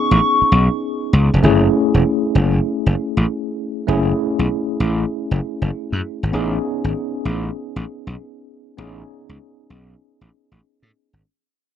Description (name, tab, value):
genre	R&B, new jack swing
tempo	98 BPM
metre	4/4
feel	swing 67% on 16ths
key	F# dorian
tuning	A4 = 441 Hz
part	hollow clarinet-like synth lead	melody	0.0-1.1 s	C#6	-17 LUFS	left 2 dB	chorus, phaser, digital delay
part	tine electric piano	accompaniment	0.0-11.3 s	A3 to G#4	-20 LUFS	left 1 dB	medium stereo tremolo
part	gritty slap bass	bass	0.1-11.2 s	E1 to A2	-16 LUFS	equal	overdrive
room	light reverb, digital ambience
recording	none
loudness	-16 LUFS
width	side -9 dB against mid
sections	0.0-1.4 A section; 1.4-11.2 B section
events	fade-out 1.4-11.2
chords	0.0 Amaj9#11 (rootless); 1.4 F#m7; 6.3 Amaj9#11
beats	0.21 0.82 | 1.44 2.05 2.66 3.27 | 3.88 4.50 5.11 5.72 | 6.33 6.95 7.56 8.17 | 8.78 9.39 10.01 10.62